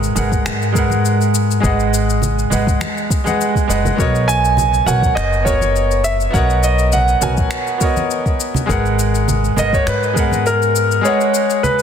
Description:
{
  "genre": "sunset chillout",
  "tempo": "102 BPM",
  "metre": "4/4",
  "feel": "straight",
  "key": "B major",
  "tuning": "A4 = 439 Hz",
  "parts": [
    { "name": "clear concert grand piano", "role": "accompaniment", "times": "0.0-11.8 s", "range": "G#3 to G#5", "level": "-19 LUFS", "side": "right 1 dB", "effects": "auto-pan, low-pass filter, ping-pong delay" },
    { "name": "upright bass", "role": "bass", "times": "0.0-11.0 s", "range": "F#1 to G#2", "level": "-18 LUFS", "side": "equal", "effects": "none" },
    { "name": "electronic shaker and finger snaps", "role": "drums", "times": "0.0-11.8 s", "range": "none", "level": "-26 LUFS", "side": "left 6 dB", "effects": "soft clipping on snare" },
    { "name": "congas", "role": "percussion", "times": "0.2-11.8 s", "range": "none", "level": "-24 LUFS", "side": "right 2 dB", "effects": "none" },
    { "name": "electronic kick drum", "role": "drums", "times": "0.3-10.3 s", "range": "none", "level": "-19 LUFS", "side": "equal", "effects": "none" },
    { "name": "clear concert grand piano", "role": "melody", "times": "4.3-11.8 s", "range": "A#4 to G#5", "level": "-17 LUFS", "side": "right 1 dB", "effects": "ping-pong delay" }
  ],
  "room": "moderate concert hall reverb, RT60 2.0 s",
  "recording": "dense, heavily limited modern master",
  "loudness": "-13 LUFS",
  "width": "side -8 dB against mid",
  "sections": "0.0-11.8 A section",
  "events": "none",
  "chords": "0.0 G#m9; 1.6 B6; 4.0 Bmaj9; 8.7 G#m9; 11.0 B69"
}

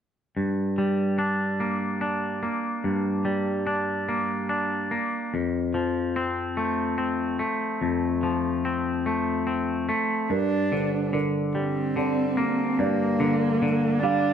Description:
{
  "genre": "rock",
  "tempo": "48 BPM (dotted quarters)",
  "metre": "6/8",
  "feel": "straight",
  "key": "G minor",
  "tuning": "A4 = 440 Hz",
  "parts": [
    { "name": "twangy electric guitar", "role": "arpeggios", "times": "0.4-14.3 s", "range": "F2 to D4", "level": "-24 LUFS", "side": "left 1 dB", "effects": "none" },
    { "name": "muted cello", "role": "melody", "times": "10.3-14.3 s", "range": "Bb3 to D4", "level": "-25 LUFS", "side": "right 1 dB", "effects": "none" },
    { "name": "felt-muted upright piano", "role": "arpeggios", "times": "10.3-14.3 s", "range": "Bb4 to F5", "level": "-31 LUFS", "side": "right 6 dB", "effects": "none" }
  ],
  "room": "moderate stone room reverb, RT60 1.1 s",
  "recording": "band playing live in one room",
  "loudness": "-23 LUFS",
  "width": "side -8 dB against mid",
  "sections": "0.4-10.3 A section; 10.3-14.3 B section",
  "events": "none",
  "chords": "0.4 Gm; 5.3 F; 10.3 Gm"
}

